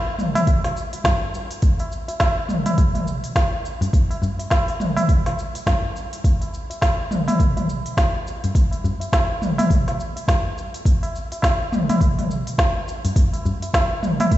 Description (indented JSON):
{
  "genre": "downtempo",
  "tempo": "104 BPM",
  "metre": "4/4",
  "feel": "swing 59% on 16ths",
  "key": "none",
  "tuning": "none",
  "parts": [
    { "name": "organic electronic drum kit", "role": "drums", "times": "0.2-14.4 s", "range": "cabasa, hi-hat, snare drum, toms", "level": "-23 LUFS", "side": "equal", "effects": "overdrive" },
    { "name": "tabla", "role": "percussion", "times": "0.2-14.3 s", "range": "none", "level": "-26 LUFS", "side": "equal", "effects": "none" },
    { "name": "electronic kick drum", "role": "drums", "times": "0.5-14.4 s", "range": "none", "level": "-19 LUFS", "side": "equal", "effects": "overdrive" }
  ],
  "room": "light reverb",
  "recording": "played on a big sound system in a bare room, stone room reverb, nothing above 8.0 kHz",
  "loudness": "-18 LUFS",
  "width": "side -14 dB against mid",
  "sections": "0.0-14.4 A section",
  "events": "none",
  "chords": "none"
}